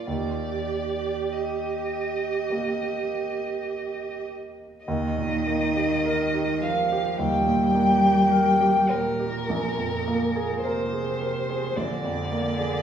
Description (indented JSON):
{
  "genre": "classical, slow romantic movement for piano trio",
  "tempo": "48-55 BPM",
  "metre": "4/4",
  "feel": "rubato",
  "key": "Eb major",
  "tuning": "A4 = 440 Hz",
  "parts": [
    { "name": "warm violin", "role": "melody", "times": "0.0-12.8 s", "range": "Bb4 to G5", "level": "-27 LUFS", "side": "left 2 dB", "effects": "none" },
    { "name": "rich cello", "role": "second line", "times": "0.0-12.8 s", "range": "Bb2 to G4", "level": "-27 LUFS", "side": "right 4 dB", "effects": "none" },
    { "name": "clear baby grand piano", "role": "accompaniment", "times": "0.0-12.8 s", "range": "Bb1 to Bb4", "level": "-28 LUFS", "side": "right 1 dB", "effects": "none" }
  ],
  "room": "wet recital hall reverb, RT60 1.8 s",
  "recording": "heard from further back in the room, small room ambience",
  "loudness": "-22 LUFS",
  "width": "side -8 dB against mid",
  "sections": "0.0-4.9 A section; 4.9-12.8 B section",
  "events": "none",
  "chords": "0.1 Eb; 9.5 Bb7"
}